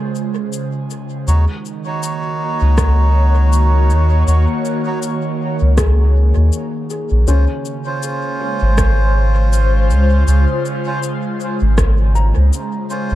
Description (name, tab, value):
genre	ambient dub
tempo	80 BPM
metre	4/4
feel	swing 57% on 16ths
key	unclear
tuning	A4 = 440 Hz
part	airy breathy pad	sustained chords	0.0-13.2 s	Db3 to Db5	-22 LUFS	equal	chorus, phaser
part	electronic cabasa and rim click	drums	0.2-13.1 s	none	-26 LUFS	equal	overdrive, dub echo
part	melodica	stabs	1.3-13.2 s	Db4 to Db5	-24 LUFS	right 3 dB	dub echo
part	soft dub sub bass	bass	1.3-13.2 s	Ab1 to Eb2	-12 LUFS	equal	none
part	electronic kick drum	drums	2.8-11.9 s	none	-18 LUFS	equal	overdrive
part	felt-muted upright piano	arpeggios	5.8-13.2 s	Db4 to Bb5	-28 LUFS	left 4 dB	vintage 12-bit sampler grit, tape echo
room	light reverb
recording	none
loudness	-13 LUFS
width	side -14 dB against mid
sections	0.0-13.2 A section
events	break 0.0-1.3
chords	0.0 Dbmaj7; 1.3 Ebm7; 7.3 Dbmaj7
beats	0.53 | 1.28 2.03 2.78 3.53 | 4.28 5.03 5.78 6.53 | 7.28 8.03 8.78 9.53 | 10.28 11.03 11.78 12.53